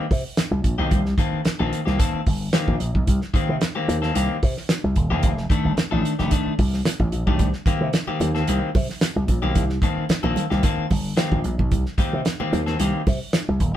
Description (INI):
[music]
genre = funk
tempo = 111 BPM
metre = 4/4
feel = straight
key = C dorian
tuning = A4 = 440 Hz
[part]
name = electric guitar at the edge of break-up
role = accompaniment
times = 0.0-13.0 s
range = Eb3 to A4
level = -25 LUFS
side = left 3 dB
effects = tube saturation
[part]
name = slap bass with an envelope filter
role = bass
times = 0.1-13.8 s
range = Eb1 to C3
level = -23 LUFS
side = equal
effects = none
[part]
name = damped 70s drum kit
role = drums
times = 0.1-13.7 s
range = hi-hat, kick drum, snare drum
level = -22 LUFS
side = right 1 dB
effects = none
[part]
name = congas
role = percussion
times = 7.4-13.7 s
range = none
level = -31 LUFS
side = right 6 dB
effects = none
[sound]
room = moderate studio reverb, RT60 0.6 s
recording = band playing live in one room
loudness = -19 LUFS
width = side -12 dB against mid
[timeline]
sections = 0.0-13.8 A section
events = none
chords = 0.0 Cm7; 5.2 F13; 7.4 Cm7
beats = 0.38 | 0.92 1.46 2.00 2.54 | 3.08 3.62 4.16 4.70 | 5.24 5.78 6.32 6.86 | 7.40 7.94 8.48 9.02 | 9.56 10.10 10.64 11.18 | 11.72 12.26 12.80 13.34